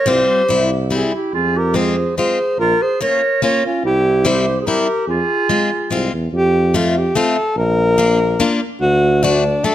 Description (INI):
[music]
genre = alpine folk, alpine dance band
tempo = 144 BPM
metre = 3/4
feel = swing 53% on 8ths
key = F harmonic minor, F major from 6.3 s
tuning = A4 = 435 Hz
[part]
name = mellow alto saxophone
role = melody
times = 0.0-9.7 s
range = D4 to Db5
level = -17 LUFS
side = equal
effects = none
[part]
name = warm clarinet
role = second line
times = 0.0-6.1 s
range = Db4 to Bb4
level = -21 LUFS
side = right 4 dB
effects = none
[part]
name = picked plugged-in steel-string acoustic guitar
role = accompaniment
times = 0.1-9.7 s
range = G3 to F#4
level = -19 LUFS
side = left 4 dB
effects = none
[part]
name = warm tuba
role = bass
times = 0.1-9.6 s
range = Bb1 to F2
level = -19 LUFS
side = right 1 dB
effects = none
[sound]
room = light reverb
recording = close, detailed microphones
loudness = -14 LUFS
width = side -12 dB against mid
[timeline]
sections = 0.0-6.3 A section; 6.3-9.7 B section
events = none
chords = 0.1 Csus4; 0.5 C; 1.3 Fm; 2.6 Bbm; 3.8 C; 5.1 Fm; 6.3 Fadd9; 7.6 Bb; 8.8 D